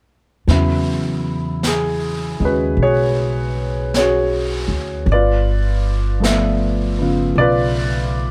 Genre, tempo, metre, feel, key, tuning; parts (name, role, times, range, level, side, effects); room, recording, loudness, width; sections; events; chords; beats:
jazz ballad; 52 BPM; 4/4; swing 67% on 8ths; E major; A4 = 440 Hz
warm concert grand piano; accompaniment; 0.5-8.3 s; C#3 to E5; -21 LUFS; equal
upright bass; bass; 0.5-8.3 s; G1 to E2; -22 LUFS; equal
vintage brush drum kit; drums; 0.5-8.3 s; brushed snare drum, hi-hat, snare drum; -30 LUFS; equal
little or no reverb; -18 LUFS; mono
0.5-8.3 A section
0.5 E69; 5.1 G13
| 0.47 1.63 2.78 3.93 | 5.07 6.22 7.37